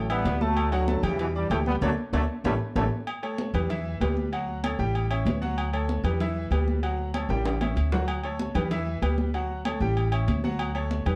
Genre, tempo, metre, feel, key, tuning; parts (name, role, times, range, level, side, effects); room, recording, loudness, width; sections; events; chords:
latin, salsa; 192 BPM; 4/4; straight; D major; A4 = 440 Hz
clear trombone section; melody; 0.0-2.8 s; B2 to B3; -31 LUFS; equal
bright grand piano; accompaniment; 0.0-11.2 s; E3 to G6; -34 LUFS; equal
upright bass; bass; 0.0-11.2 s; A1 to E2; -30 LUFS; equal
agogo bells and timbales; percussion; 0.1-11.2 s; -37 LUFS; equal
congas; percussion; 0.1-11.2 s; -35 LUFS; equal
light reverb; dark, warm production; -27 LUFS; mono
0.0-3.1 A section; 3.1-11.2 B section
drum fill 1.8-3.1, 7.3-8.1; band accent 1.8-3.1
0.0 A5; 0.6 Dmaj7; 1.2 Em7; 1.8 Dmaj7; 2.4 A7; 3.1 Emadd11; 3.7 Em7; 4.3 Dmaj7; 4.9 A7; 5.6 Dmaj7; 6.2 Em7; 6.8 Dmaj7; 7.5 A7; 8.1 Dmaj7; 8.7 Em7; 9.3 Dmaj7; 10.0 A7; 10.6 Dmaj7